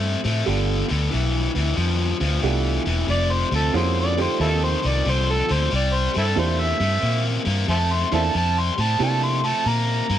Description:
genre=blues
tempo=91 BPM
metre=4/4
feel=swing 67% on 8ths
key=C mixolydian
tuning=A4 = 439 Hz
part: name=overdriven electric guitar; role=riff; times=0.0-10.2 s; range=F2 to Bb3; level=-24 LUFS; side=left 3 dB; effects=none
part: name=vintage muted fingered electric bass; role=bass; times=0.0-10.2 s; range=E1 to C3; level=-22 LUFS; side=equal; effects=none
part: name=bright grand piano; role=accompaniment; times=0.5-9.4 s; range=A3 to A4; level=-26 LUFS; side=right 9 dB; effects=plate reverb
part: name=overdriven harmonica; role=melody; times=3.1-10.2 s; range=C4 to C6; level=-24 LUFS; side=equal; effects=plate reverb
room=light reverb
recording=nothing above 10.7 kHz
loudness=-19 LUFS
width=side -11 dB against mid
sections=0.0-10.2 A section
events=harmonica solo 0.0-10.2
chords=0.5 G9; 3.1 F9; 5.7 C9

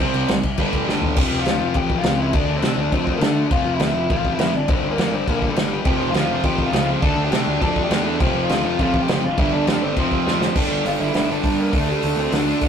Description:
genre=punk rock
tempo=204 BPM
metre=4/4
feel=straight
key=F major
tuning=A4 = 440 Hz
part: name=distorted electric guitar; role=riff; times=0.0-12.7 s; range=F2 to D4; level=-24 LUFS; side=left 5 dB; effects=overdrive
part: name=tight distorted guitar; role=riff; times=0.0-1.2, 5.9-12.7 s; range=F2 to D4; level=-24 LUFS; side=right 8 dB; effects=distortion
part: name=fuzz picked electric bass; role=bass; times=0.0-12.7 s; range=F1 to D3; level=-25 LUFS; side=equal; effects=overdrive
part: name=loose indie drum kit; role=drums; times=0.0-12.7 s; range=crash cymbal, hi-hat, kick drum, snare drum, toms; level=-22 LUFS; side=equal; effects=none
part: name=bluesy overdriven lead guitar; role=melody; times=1.2-12.6 s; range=G3 to A5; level=-25 LUFS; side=left 2 dB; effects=distortion
room=light reverb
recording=rough rehearsal-room recording, tube saturation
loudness=-17 LUFS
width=side -8 dB against mid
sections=0.0-1.2 A section; 1.2-10.6 B section; 10.6-12.7 C section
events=drum fill 0.9, 10.3; half time 10.6-12.7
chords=0.0 C5; 0.6 G5; 1.2 F; 2.3 Dm; 3.5 F; 4.5 Gm; 5.9 F; 7.0 Dm; 8.2 F; 9.2 G5; 10.0 F5; 10.6 Gm; 11.7 D5

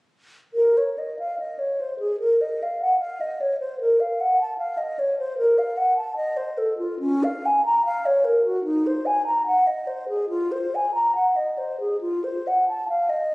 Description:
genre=classical, baroque-style fantasia for unaccompanied flute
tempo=74 BPM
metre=4/4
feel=uneven beats, rubato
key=Bb minor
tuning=A4 = 440 Hz
part: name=mellow hollow concert flute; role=solo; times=0.5-13.3 s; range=Db4 to Bb5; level=-20 LUFS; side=equal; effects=none
room=wet recital hall reverb, RT60 1.7 s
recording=recorded on a phone in the room, club reverb, compression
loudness=-20 LUFS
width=side -24 dB against mid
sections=0.5-13.3 A section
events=none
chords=none

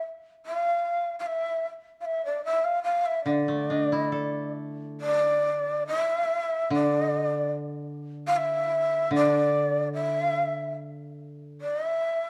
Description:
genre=japanese traditional, Japanese chamber music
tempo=68-78 BPM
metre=2/4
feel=rubato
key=D hirajoshi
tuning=A4 = 440 Hz
part: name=breathy long shakuhachi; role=melody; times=0.5-12.3 s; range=D5 to F5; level=-28 LUFS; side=equal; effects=none
part: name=koto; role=accompaniment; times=3.3-11.6 s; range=D3 to A4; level=-32 LUFS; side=equal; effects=none
room=moderate recital hall reverb, RT60 1.4 s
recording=dark, warm production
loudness=-27 LUFS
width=mono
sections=0.0-5.0 A section; 5.0-12.3 B section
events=none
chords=none

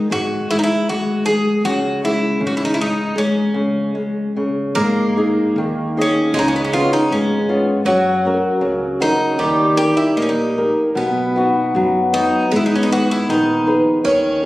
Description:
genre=fado-style ballad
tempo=78 BPM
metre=2/4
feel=rubato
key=C# minor, G# minor from 4.8 s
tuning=A4 = 442 Hz
part: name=flamenco guitar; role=accompaniment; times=0.0-14.5 s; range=B2 to D#5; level=-17 LUFS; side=left 1 dB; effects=none
part: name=Greek bouzouki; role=melody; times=0.1-13.8 s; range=B3 to G#4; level=-20 LUFS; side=equal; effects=none
part: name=upright bass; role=bass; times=0.1-14.5 s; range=G#1 to F#2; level=-29 LUFS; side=equal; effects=none
part: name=picked twelve-string acoustic guitar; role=second line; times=4.8-14.5 s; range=F#3 to C#4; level=-20 LUFS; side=right 1 dB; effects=none
room=wet recital hall reverb, RT60 1.4 s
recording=recorded on a phone in the room, club reverb, compression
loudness=-15 LUFS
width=side -17 dB against mid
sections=0.0-4.8 A section; 4.8-14.5 B section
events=none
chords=0.0 G#5; 1.7 C#5; 4.8 G#5; 6.3 C#7; 7.9 F#; 9.4 D#; 11.0 B; 12.5 G#m

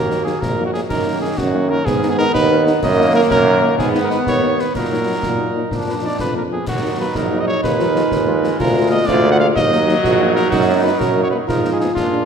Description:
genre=military-style march for wind band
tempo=125 BPM (dotted quarters)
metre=6/8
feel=straight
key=Eb minor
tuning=A4 = 440 Hz
part: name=dark cornet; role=melody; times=0.0-12.2 s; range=F4 to Gb5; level=-21 LUFS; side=equal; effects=none
part: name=warm euphonium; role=second line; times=0.0-12.2 s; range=Bb3 to Gb4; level=-21 LUFS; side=right 3 dB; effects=none
part: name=bright trombone section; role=sustained chords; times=0.0-12.2 s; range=Eb3 to F4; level=-24 LUFS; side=right 1 dB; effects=none
part: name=clear tuba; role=bass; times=0.0-12.2 s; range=Bb1 to Bb2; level=-19 LUFS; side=right 3 dB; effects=none
part: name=mellow French horn section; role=accompaniment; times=0.1-12.2 s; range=F3 to F4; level=-25 LUFS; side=left 6 dB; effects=none
part: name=concert snare drum, concert bass drum and clash cymbals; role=drums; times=0.1-12.1 s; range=none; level=-26 LUFS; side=left 2 dB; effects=none
room=moderate scoring stage reverb, RT60 1.5 s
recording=none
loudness=-14 LUFS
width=side -7 dB against mid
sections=0.0-12.2 A section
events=none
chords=0.0 Ebm; 0.9 Ebm/Gb; 1.9 Abm; 2.8 Ebm/Gb; 3.8 Abm; 4.7 Ebm/Bb; 5.7 Bb; 6.7 Ebm; 7.6 Fm7b5/Eb; 8.6 Bb7/D; 9.6 Ebm; 10.5 Ebm/Gb; 11.5 Fm7b5/Ab

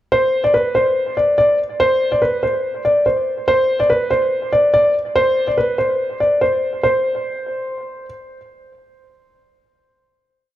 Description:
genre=hip hop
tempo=143 BPM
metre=4/4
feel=half-time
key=unclear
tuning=A4 = 440 Hz
part: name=dark concert grand piano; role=solo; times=0.1-8.1 s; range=B4 to D5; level=-15 LUFS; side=equal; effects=analog delay
room=moderate plate reverb, RT60 3.5 s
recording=echo-heavy mix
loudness=-14 LUFS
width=side -12 dB against mid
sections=0.1-6.8 hook; 6.8-10.2 final note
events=none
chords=none

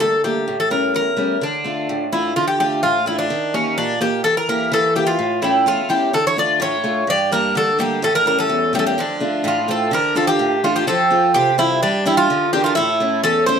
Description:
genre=greek folk, Greek bouzouki band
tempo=127 BPM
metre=2/4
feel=straight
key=D harmonic minor, D minor from 9.9 s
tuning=A4 = 440 Hz
part: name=Greek bouzouki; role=melody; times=0.0-13.6 s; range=C#4 to D5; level=-17 LUFS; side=equal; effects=plate reverb
part: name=picked acoustic archtop guitar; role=accompaniment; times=0.0-13.6 s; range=E2 to D5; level=-21 LUFS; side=left 1 dB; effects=none
part: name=Greek bouzouki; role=second line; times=5.4-13.6 s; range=F3 to G4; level=-23 LUFS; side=right 5 dB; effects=none
room=moderate studio reverb, RT60 0.6 s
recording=none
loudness=-15 LUFS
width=side -7 dB against mid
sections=0.0-2.4 A section; 2.4-9.9 A section; 9.9-13.6 B section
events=none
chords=0.5 A7; 1.4 Dm; 3.3 Eb; 4.2 Edim; 5.2 A; 6.1 Dm; 7.1 Gmadd9; 8.0 A7; 9.0 Dm; 10.9 F; 11.8 Gm; 12.8 A

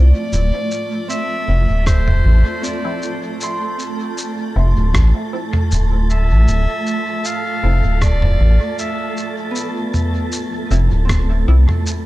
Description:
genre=ambient dub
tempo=78 BPM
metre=4/4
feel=swing 54% on 16ths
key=D dorian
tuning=A4 = 439 Hz
part: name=bright clarinet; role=melody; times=0.0-9.3 s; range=C5 to F5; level=-25 LUFS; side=equal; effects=dub echo
part: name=granular cloud pad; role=sustained chords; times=0.0-12.1 s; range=A3 to D5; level=-26 LUFS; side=right 2 dB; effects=built-in reverb
part: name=filtered dub chord stab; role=stabs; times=0.0-11.6 s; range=F3 to E4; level=-32 LUFS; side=left 2 dB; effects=phaser, lush chorus, vintage 12-bit sampler grit, dub echo
part: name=round analog bass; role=bass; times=0.0-11.7 s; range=D1 to C2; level=-13 LUFS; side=equal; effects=tube saturation
part: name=lo-fi sampler-style drum kit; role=drums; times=0.3-12.0 s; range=rim click, shaker, toms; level=-22 LUFS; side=equal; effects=dub echo
part: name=wind-like tuned noise texture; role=texture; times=0.9-12.1 s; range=A4 to A5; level=-30 LUFS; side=right 3 dB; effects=built-in reverb
part: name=Celtic harp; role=arpeggios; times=1.1-12.1 s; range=B3 to C6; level=-29 LUFS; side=equal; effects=tape echo
part: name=electronic kick drum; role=drums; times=1.9-11.3 s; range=none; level=-17 LUFS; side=equal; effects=none
room=digital ambience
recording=none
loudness=-15 LUFS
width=side -17 dB against mid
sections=0.0-12.1 A section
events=none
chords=0.0 Dm9

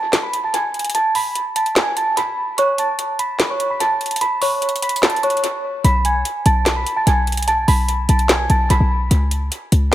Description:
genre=hip hop, trap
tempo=147 BPM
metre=4/4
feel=half-time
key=unclear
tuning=A4 = 439 Hz
part: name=metallic FM bell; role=melody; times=0.0-9.1 s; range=C#5 to B6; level=-19 LUFS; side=right 1 dB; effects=chorus, tremolo, low-pass filter, tape echo
part: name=trap drum kit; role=drums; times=0.1-9.9 s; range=handclaps, hi-hat, snare drum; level=-20 LUFS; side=equal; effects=tape echo
part: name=short 808-style bass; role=bass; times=5.8-9.9 s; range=B1 to C#2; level=-16 LUFS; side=equal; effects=none
room=light reverb, digital ambience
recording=echo-heavy mix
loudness=-16 LUFS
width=side -14 dB against mid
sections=0.0-9.9 A section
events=break 0.0-5.8; filter sweep on synth bell 0.0-9.9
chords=0.0 G#m; 2.6 A; 5.8 G#m/B; 9.1 N.C.

